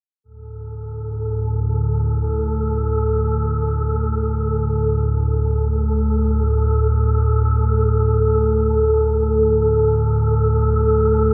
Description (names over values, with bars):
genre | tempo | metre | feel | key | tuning
dark ambient drone | free time | none | none | unclear | A4 = 435 Hz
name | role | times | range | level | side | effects
analog drone | drone | 0.5-11.3 s | D2 to A2 | -20 LUFS | equal | lush chorus
wind-like tuned noise texture | texture | 0.7-11.3 s | A4 | -24 LUFS | equal | built-in reverb
room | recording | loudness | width
wet lush hall reverb, RT60 2.8 s | dreamy mix soaked in reverb, nothing above 7.5 kHz | -19 LUFS | mono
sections
0.2-11.3 A section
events
none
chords
0.2 D5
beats
free time